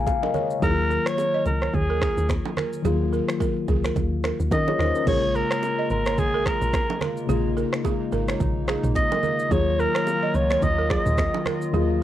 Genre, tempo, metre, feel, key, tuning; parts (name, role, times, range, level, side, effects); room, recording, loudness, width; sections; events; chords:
afrobeats; 108 BPM; 4/4; swing 58% on 16ths; Bb minor; A4 = 437 Hz
mellow tine electric piano; accompaniment; 0.0-12.0 s; Db3 to Bb5; -27 LUFS; left 7 dB; fast stereo tremolo, cassette tape
deep log drum bass; bass; 0.0-12.0 s; Ab1 to Eb3; -26 LUFS; equal
afro-pop drum kit; drums; 0.1-11.9 s; crash cymbal, finger snaps, kick drum, rim click, shaker, toms; -27 LUFS; equal; cassette tape
bongos and congas; percussion; 0.1-11.9 s; -33 LUFS; right 7 dB
balafon; riff; 0.2-11.9 s; Ab4 to Eb5; -30 LUFS; right 8 dB; cassette tape, tape echo
growling alto saxophone; melody; 0.6-11.4 s; Ab4 to Eb5; -25 LUFS; equal; cassette tape, tape echo, plate reverb
hollow soft pad; sustained chords; 5.1-12.0 s; Db3 to F4; -34 LUFS; equal; chorus, cassette tape
light reverb; home recording on cassette; -21 LUFS; side -12 dB against mid
0.0-5.1 A section; 5.1-12.0 B section
tine electric piano fill 0.0-0.6
0.0 Bbm7; 0.6 Ebmadd9; 5.1 Bbm7; 9.5 Ebmadd9